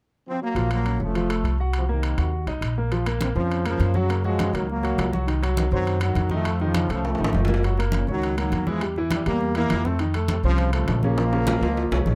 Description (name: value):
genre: latin, salsa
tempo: 203 BPM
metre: 4/4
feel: straight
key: Bb minor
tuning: A4 = 440 Hz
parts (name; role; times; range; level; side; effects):
- brilliant trombone section; melody; 0.3-12.2 s; F2 to C4; -28 LUFS; equal; none
- upright bass; bass; 0.5-12.2 s; F1 to Gb2; -26 LUFS; equal; none
- clear grand piano; accompaniment; 0.6-12.2 s; Db3 to Gb5; -31 LUFS; equal; none
- timbales; percussion; 0.6-12.1 s; none; -34 LUFS; equal; none
- congas; percussion; 2.9-12.2 s; none; -32 LUFS; equal; none
room: little or no reverb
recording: none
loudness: -23 LUFS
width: mono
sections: 0.6-2.9 A section; 2.9-12.2 B section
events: drum fill 7.0-7.6, 11.2-12.2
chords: 0.0 Fsus4; 0.6 Bbm; 1.1 F; 1.7 Cm7b5; 2.3 Ebm; 2.9 Bbmadd9; 4.1 Gb; 5.3 Cdim; 6.5 F7; 7.6 Gb; 8.8 Gm13/E; 10.0 F7; 11.2 Bbm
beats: 0.26 | 0.55 0.85 1.15 1.44 | 1.74 2.03 2.33 2.62 | 2.92 3.21 3.51 3.80 | 4.10 4.39 4.69 4.99 | 5.28 5.58 5.87 6.17 | 6.46 6.75 7.05 7.34 | 7.64 7.93 8.23 8.52 | 8.82 9.11 9.41 9.70 | 10.00 10.29 10.59 10.88 | 11.18 11.47 11.77 12.06